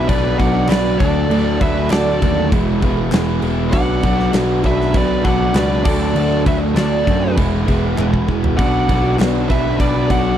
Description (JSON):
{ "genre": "classic rock", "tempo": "99 BPM", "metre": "4/4", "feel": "straight", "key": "B dorian", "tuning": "A4 = 440 Hz", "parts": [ { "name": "fuzz lead guitar", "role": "melody", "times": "0.0-10.4 s", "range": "D5 to F#5", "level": "-22 LUFS", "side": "right 1 dB", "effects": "distortion" }, { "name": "octave-fuzz lead guitar", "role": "second line", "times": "0.0-10.4 s", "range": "A4 to D5", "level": "-28 LUFS", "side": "right 4 dB", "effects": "distortion" }, { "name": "fingerpicked twelve-string acoustic guitar", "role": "accompaniment", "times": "0.0-10.4 s", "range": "E2 to G#4", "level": "-26 LUFS", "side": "right 7 dB", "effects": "none" }, { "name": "overdriven semi-hollow guitar", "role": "riff", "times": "0.0-10.4 s", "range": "B2 to E4", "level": "-19 LUFS", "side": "left 1 dB", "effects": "none" }, { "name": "fuzz picked electric bass", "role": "bass", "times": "0.0-10.4 s", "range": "E1 to F#2", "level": "-20 LUFS", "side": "equal", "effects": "overdrive" }, { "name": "huge arena drum kit", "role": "drums", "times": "0.1-10.2 s", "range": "crash cymbal, kick drum, snare drum, toms", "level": "-20 LUFS", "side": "equal", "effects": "none" }, { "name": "group handclap", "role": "percussion", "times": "0.7-9.3 s", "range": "none", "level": "-35 LUFS", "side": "left 2 dB", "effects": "none" } ], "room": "small room ambience", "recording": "dry, close 1970s-style studio recording", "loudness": "-14 LUFS", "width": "side -10 dB against mid", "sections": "0.0-10.4 A section", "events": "drum fill 8.0-8.6", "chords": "0.0 Bm; 1.0 D; 2.5 E; 3.7 Bm; 5.8 D; 7.4 E; 8.6 Bm" }